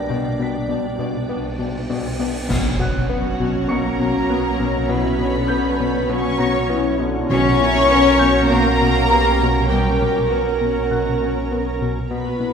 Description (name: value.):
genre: cinematic, suspense film score.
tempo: 100 BPM.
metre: 4/4.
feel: straight.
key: unclear.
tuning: A4 = 439 Hz.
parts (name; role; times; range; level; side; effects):
mellow French horn section; sustained chords; 0.0-12.5 s; D3 to A#4; -25 LUFS; right 1 dB; none.
soft additive organ-like pad; sustained chords; 0.0-12.5 s; C#4 to A#5; -30 LUFS; left 1 dB; ensemble chorus, built-in reverb.
dark chamber cello section; bass; 0.0-12.5 s; B2 to C#4; -25 LUFS; equal; none.
dark chamber double bass section; bass; 0.0-12.5 s; B1; -26 LUFS; right 2 dB; none.
clear baby grand piano; texture; 0.0-12.5 s; A#4 to C#7; -33 LUFS; equal; none.
warm chamber violin section; melody; 0.1-12.5 s; F#5 to C#6; -25 LUFS; left 2 dB; none.
warm chamber violin section; second line; 0.1-12.5 s; F#4 to D5; -24 LUFS; left 1 dB; none.
dark chamber viola section; accompaniment; 0.1-12.5 s; F#3 to A#4; -26 LUFS; right 1 dB; none.
fat analog bass; riff; 0.1-12.5 s; B2 to B3; -23 LUFS; left 4 dB; none.
cymbal swell, clash cymbals and concert bass drum; percussion; 0.1-3.7 s; none; -28 LUFS; right 1 dB; none.
cymbal swell and impact; sound effects; 1.2-4.9 s; none; -29 LUFS; right 1 dB; none.
timpani; percussion; 7.3-8.2 s; B2; -26 LUFS; right 2 dB; none.
room: wet scoring stage reverb, RT60 1.9 s.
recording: heard from further back in the room.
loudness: -16 LUFS.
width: side -6 dB against mid.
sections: 0.0-2.5 A section; 2.5-12.5 B section.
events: cymbal swell 1.2-2.5; band accent 2.5-3.1; impact 2.5-4.9.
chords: 0.0 G/B; 2.5 F#/B.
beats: | 0.10 0.70 1.30 1.90 | 2.50 3.10 3.70 4.30 | 4.90 5.50 6.10 6.70 | 7.30 7.90 8.50 9.10 | 9.70 10.30 10.90 11.50 | 12.10.